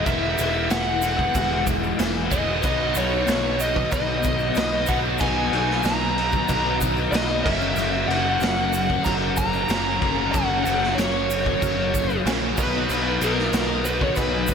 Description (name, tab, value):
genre	classic rock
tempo	94 BPM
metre	4/4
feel	straight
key	unclear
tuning	A4 = 440 Hz
part	bluesy overdriven lead guitar	melody	0.0-14.5 s	A#4 to A#5	-25 LUFS	equal	distortion, analog delay
part	distorted electric guitar	riff	0.0-14.5 s	F#2 to E4	-28 LUFS	right 11 dB	overdrive
part	overdriven semi-hollow guitar	riff	0.0-14.5 s	F#2 to E4	-28 LUFS	left 12 dB	phaser, slapback echo
part	modern bright picked electric bass	bass	0.0-14.5 s	E1 to B1	-29 LUFS	equal	none
part	honky-tonk upright piano	accompaniment	0.1-14.5 s	B3 to C#5	-34 LUFS	right 3 dB	slapback echo
part	raw garage drum kit	drums	0.1-14.5 s	crash cymbal, kick drum, snare drum	-25 LUFS	equal	none
part	egg shaker	percussion	0.1-14.5 s	none	-38 LUFS	right 10 dB	none
room	moderate lush hall reverb, RT60 3.0 s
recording	big arena sound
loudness	-20 LUFS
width	side -6 dB against mid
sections	0.0-14.5 A section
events	none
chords	0.0 Eadd9; 2.6 B; 7.5 F#; 12.6 B